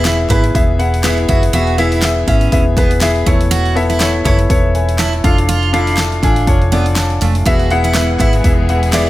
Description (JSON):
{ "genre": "piano-driven pop", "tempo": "122 BPM", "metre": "4/4", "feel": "swing 56% on 16ths", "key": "unclear", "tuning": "A4 = 441 Hz", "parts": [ { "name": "warm upright piano", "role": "accompaniment", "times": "0.0-9.1 s", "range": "E3 to A5", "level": "-16 LUFS", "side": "left 3 dB", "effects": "none" }, { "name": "picked steel-string acoustic guitar", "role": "riff", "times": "0.0-9.1 s", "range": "A3 to F#4", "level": "-21 LUFS", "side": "right 5 dB", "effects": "none" }, { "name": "vintage muted fingered electric bass", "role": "bass", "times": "0.0-9.1 s", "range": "E1 to A1", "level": "-16 LUFS", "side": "equal", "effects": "none" }, { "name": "pop drum kit", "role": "drums", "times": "0.0-9.1 s", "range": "handclaps, hi-hat, kick drum, snare drum", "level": "-16 LUFS", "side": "equal", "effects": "none" }, { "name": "group handclap", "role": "percussion", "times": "0.0-9.1 s", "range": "none", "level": "-30 LUFS", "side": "left 3 dB", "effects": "none" }, { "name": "warm studio string section", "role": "sustained chords", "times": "7.5-9.1 s", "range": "E3 to G#4", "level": "-25 LUFS", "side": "left 1 dB", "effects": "none" } ], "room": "light reverb, studio reverb", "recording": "none", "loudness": "-11 LUFS", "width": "side -16 dB against mid", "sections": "0.0-9.1 A section", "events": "none", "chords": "0.0 E; 3.3 Aadd9/E; 5.2 Dm/F; 7.5 E", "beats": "0.05 0.55 1.04 | 1.53 2.03 2.52 3.02 | 3.51 4.00 4.50 4.99 | 5.48 5.98 6.47 6.96 | 7.46 7.95 8.45 8.94" }